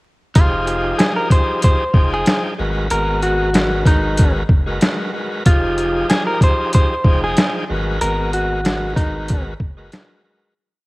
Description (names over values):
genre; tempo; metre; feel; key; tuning
hip hop, boom-bap hip-hop; 94 BPM; 4/4; swing 56% on 16ths; unclear; A4 = 438 Hz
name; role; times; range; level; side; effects
boom bap sampler-style drum kit; drums; 0.3-10.1 s; hi-hat, kick drum, snare drum; -15 LUFS; equal; cassette tape
semi-hollow electric guitar; melody; 0.4-9.4 s; Eb4 to C5; -20 LUFS; equal; cassette tape
bright tonewheel organ; accompaniment; 0.4-10.5 s; F3 to G5; -23 LUFS; equal; overdrive, fast rotary speaker, cassette tape
sub bass with octave; bass; 0.4-9.9 s; F1 to Ab1; -24 LUFS; equal; none
room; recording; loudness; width
light reverb, digital ambience; home recording on cassette, vinyl crackle; -14 LUFS; side -22 dB against mid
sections
0.4-10.6 verse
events
fade-out 8.0-10.6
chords
0.4 Fm9; 2.6 Abm9; 5.5 Fm9; 7.7 Abm9